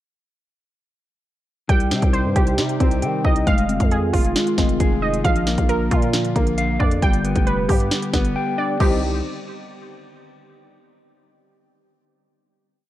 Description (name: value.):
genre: hip hop, trap.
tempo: 135 BPM.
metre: 4/4.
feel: half-time.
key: C minor.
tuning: A4 = 441 Hz.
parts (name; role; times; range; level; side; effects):
mellow electric guitar; accompaniment; 1.7-9.0 s; F3 to G5; -24 LUFS; left 4 dB; spring reverb.
dark analog pad; sustained chords; 1.7-9.0 s; C3 to G4; -28 LUFS; right 2 dB; chorus.
warbly dusty pluck; arpeggios; 1.7-9.0 s; Ab3 to G5; -25 LUFS; right 2 dB; chorus, ping-pong delay.
growling 808-style bass; bass; 1.7-9.2 s; F1 to Eb3; -24 LUFS; equal; none.
trap drum kit; drums; 1.7-8.9 s; crash cymbal, hi-hat, kick drum, snare drum; -20 LUFS; equal; none.
room: little or no reverb.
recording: dark, warm production.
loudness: -17 LUFS.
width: side -14 dB against mid.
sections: 1.7-8.8 hook; 8.8-10.6 final chord.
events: drums muted 8.4-8.8.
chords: 1.7 Cm; 3.5 Fm7; 5.2 Bb; 7.0 G; 8.8 Cm.